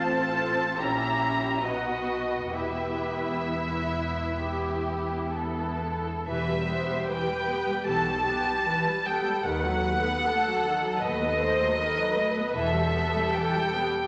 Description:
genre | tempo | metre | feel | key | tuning
classical, slow romantic movement for string orchestra | 61-81 BPM | 4/4 | rubato | E minor | A4 = 440 Hz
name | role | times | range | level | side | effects
muted studio violin section | melody | 0.0-14.1 s | D#5 to A#5 | -31 LUFS | equal | none
muted symphonic violin section | second line | 0.0-14.1 s | E4 to E5 | -34 LUFS | equal | none
muted studio viola section | accompaniment | 0.0-14.1 s | D#3 to A4 | -33 LUFS | equal | none
muted chamber cello section | bass | 0.0-13.2 s | D#2 to B2 | -41 LUFS | equal | none
muted studio double bass section | bass | 0.0-13.2 s | E1 to D#2 | -38 LUFS | equal | none
room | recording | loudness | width
wet recital hall reverb, RT60 1.6 s | none | -27 LUFS | mono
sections
0.0-6.3 A section; 6.3-14.1 A section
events
none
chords
0.0 F/A; 0.8 A#dim7; 1.6 B; 2.5 Em; 9.4 B7/D#; 12.5 Em

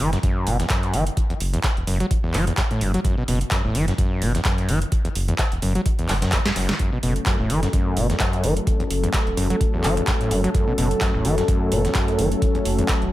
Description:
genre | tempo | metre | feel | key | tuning
acid house | 128 BPM | 4/4 | swing 55% on 16ths | F# minor | A4 = 440 Hz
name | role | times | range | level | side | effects
overdriven acid bass | riff | 0.0-12.8 s | E2 to F#3 | -24 LUFS | equal | distortion, sidechain pumping, ping-pong delay
round analog bass | bass | 0.0-13.1 s | E1 to F#1 | -24 LUFS | equal | tube saturation, sidechain pumping
booming analog drum machine | drums | 0.0-13.0 s | handclaps, hi-hat, snare drum | -27 LUFS | right 1 dB | overdrive
breakbeat sampler-style drum kit | drums | 0.0-13.1 s | hi-hat, snare drum | -37 LUFS | equal | none
electronic kick drum | drums | 0.2-13.0 s | none | -23 LUFS | equal | overdrive
warm analog pad | sustained chords | 6.8-13.1 s | F#3 to A4 | -25 LUFS | left 1 dB | chorus, sidechain pumping
room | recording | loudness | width
light reverb | none | -19 LUFS | side -15 dB against mid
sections
0.0-13.1 A section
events
drum fill 6.4-6.8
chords
0.0 F#m

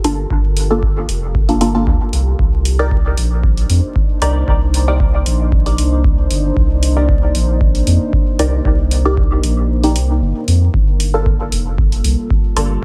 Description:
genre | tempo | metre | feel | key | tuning
dub techno | 115 BPM | 4/4 | swing 53% on 16ths | unclear | A4 = 440 Hz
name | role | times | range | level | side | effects
deep dark ambient pad | sustained chords | 0.0-12.8 s | G3 to C5 | -26 LUFS | equal | chorus, built-in reverb, sidechain pumping
filtered dub chord stab | stabs | 0.0-12.7 s | Bb3 to D5 | -22 LUFS | equal | phaser, sidechain pumping, dub echo
round analog bass | bass | 0.0-12.8 s | F1 to F2 | -18 LUFS | equal | sidechain pumping
electronic hi-hat | drums | 0.0-12.7 s | none | -27 LUFS | equal | none
electronic kick drum | drums | 0.3-12.4 s | none | -19 LUFS | equal | overdrive
room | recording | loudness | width
little or no reverb | vinyl crackle | -15 LUFS | mono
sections
0.0-12.8 A section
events
kick drops out 9.7-10.7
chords
0.0 Gm9; 2.4 Cm9; 10.7 Gm9

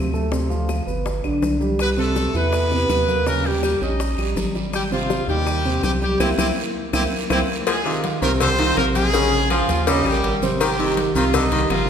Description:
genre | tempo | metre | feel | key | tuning
latin, salsa | 163 BPM | 4/4 | straight | C minor | A4 = 439 Hz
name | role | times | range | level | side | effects
dark concert grand piano | accompaniment | 0.0-11.9 s | C3 to Db5 | -23 LUFS | right 3 dB | none
round analog bass | bass | 0.0-11.9 s | G1 to E2 | -24 LUFS | equal | none
bongos and cowbell | percussion | 0.1-11.9 s | none | -29 LUFS | left 4 dB | none
congas | percussion | 0.1-11.9 s | none | -30 LUFS | left 2 dB | none
maracas | percussion | 0.1-11.9 s | none | -37 LUFS | left 5 dB | none
claves | percussion | 0.7-11.9 s | none | -36 LUFS | left 5 dB | none
brilliant horn section | melody | 1.8-11.9 s | F3 to Eb5 | -23 LUFS | left 1 dB | none
guiro | percussion | 1.8-11.9 s | none | -36 LUFS | right 5 dB | none
edgy baritone saxophone | second line | 7.7-11.8 s | C3 to G3 | -24 LUFS | left 4 dB | none
room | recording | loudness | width
wet scoring stage reverb, RT60 2.0 s | recorded in a church or concert hall | -18 LUFS | side -8 dB against mid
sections
0.0-7.7 A section; 7.7-11.9 B section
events
band accent 6.2-7.7; drum fill 6.6-7.7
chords
0.3 Dm7; 1.1 G; 1.8 Cmaj7; 3.3 Eb7; 4.7 Abmaj7; 6.2 C7; 7.7 Fm7; 9.1 Bbm7; 9.9 Eb7; 10.6 Abmaj7

